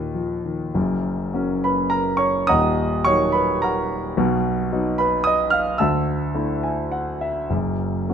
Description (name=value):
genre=classical, lyrical solo piano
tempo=98-114 BPM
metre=3/4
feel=rubato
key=unclear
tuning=A4 = 440 Hz
part: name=warm concert grand piano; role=solo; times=0.0-8.1 s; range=D#1 to E#6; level=-19 LUFS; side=equal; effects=none
room=light reverb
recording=close, detailed microphones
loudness=-19 LUFS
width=side -8 dB against mid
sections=0.8-8.1 A section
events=grand piano fill 6.3-7.5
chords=0.0 Ebsus2; 0.8 F#; 2.5 D#m; 4.2 B; 5.8 Dsus2; 7.5 N.C.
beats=0.15 | 0.75 1.34 1.92 | 2.49 3.06 3.61 | 4.16 4.71 5.24 | 5.78 6.34 6.91 | 7.50 8.08